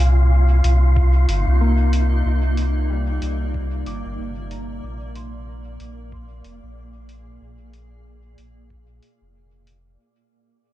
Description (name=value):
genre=ambient dub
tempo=93 BPM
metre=4/4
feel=swing 58% on 16ths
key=unclear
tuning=A4 = 438 Hz
part: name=granular cloud pad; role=sustained chords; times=0.0-10.0 s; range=Bb2 to D5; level=-32 LUFS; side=right 1 dB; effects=built-in reverb
part: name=warm sub bass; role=bass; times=0.0-10.0 s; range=F1 to C2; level=-18 LUFS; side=equal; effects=none
part: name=electronic hi-hat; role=drums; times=0.0-9.8 s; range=none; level=-36 LUFS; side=left 1 dB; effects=small room ambience, dub echo
part: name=wind-like tuned noise texture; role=texture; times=0.0-10.0 s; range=F4 to F5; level=-30 LUFS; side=right 1 dB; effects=built-in reverb
part: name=electronic kick drum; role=drums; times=1.0-8.9 s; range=none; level=-25 LUFS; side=equal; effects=none
part: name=Celtic harp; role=arpeggios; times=1.6-8.2 s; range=G3 to D6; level=-31 LUFS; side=left 4 dB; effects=low-pass filter, analog delay
room=little or no reverb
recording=echo-heavy mix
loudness=-16 LUFS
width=side -15 dB against mid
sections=0.0-10.0 A section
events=fade-out 0.0-10.0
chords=0.0 Cm9; 4.8 Bb7